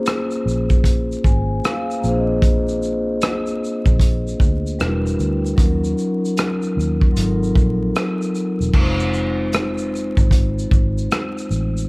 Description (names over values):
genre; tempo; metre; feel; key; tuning
lo-fi hip hop; 76 BPM; 4/4; swing 65% on 16ths; unclear; A4 = 440 Hz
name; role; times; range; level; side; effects
vibraphone with soft mallets; accompaniment; 0.0-11.9 s; Gb3 to Ab5; -21 LUFS; left 1 dB; cassette tape, low-pass filter
crunchy breakbeat drum kit; drums; 0.1-11.9 s; crash cymbal, hi-hat, kick drum, rim click, shaker; -18 LUFS; equal; none
vintage muted fingered electric bass; bass; 0.5-11.9 s; E1 to Eb2; -22 LUFS; equal; none
room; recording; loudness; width
light reverb; vinyl crackle; -16 LUFS; side -26 dB against mid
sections
0.0-8.7 A section; 8.7-11.9 A section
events
vibraphone fill 0.8-2.4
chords
0.0 Bbm9; 2.0 Bb7; 4.8 Em9; 5.6 Ebm9; 7.2 Ab13; 8.7 Fm7